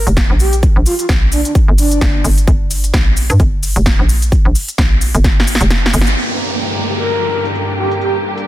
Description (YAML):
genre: bass house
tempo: 130 BPM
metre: 4/4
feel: swing 57% on 16ths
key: G minor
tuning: A4 = 440 Hz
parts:
  - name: breathy flute-like synth lead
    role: melody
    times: 0.0-2.2, 7.0-8.2 s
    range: D4 to Bb4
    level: -19 LUFS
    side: right 1 dB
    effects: wide subtle chorus, dub echo
  - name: hollow knocking FM bass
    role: bass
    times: 0.0-6.2 s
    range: F1 to G2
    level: -14 LUFS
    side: equal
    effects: sidechain pumping
  - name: big-room dance drum kit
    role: drums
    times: 0.1-8.5 s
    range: hi-hat, shaker, snare drum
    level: -18 LUFS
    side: equal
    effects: low-pass filter on hats, low-pass filter on perc, low-pass filter on snare, low-pass filter on room
  - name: electronic kick drum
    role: drums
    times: 0.2-5.3 s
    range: none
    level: -13 LUFS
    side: equal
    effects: none
  - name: muted studio string section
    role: sustained chords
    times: 6.2-8.5 s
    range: G2 to G4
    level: -20 LUFS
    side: left 1 dB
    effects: sidechain pumping, low-pass filter
  - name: downlifter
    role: sound effects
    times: 6.2-8.5 s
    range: none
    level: -20 LUFS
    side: right 1 dB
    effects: none
room: little or no reverb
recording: dense, heavily limited modern master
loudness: -11 LUFS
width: side -14 dB against mid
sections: 0.0-6.2 A section; 6.2-8.5 B section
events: drum fill 5.2-6.2; kick drops out 5.7-6.2; band accent 6.0; filter sweep on string section 6.2-8.5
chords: 0.0 Gm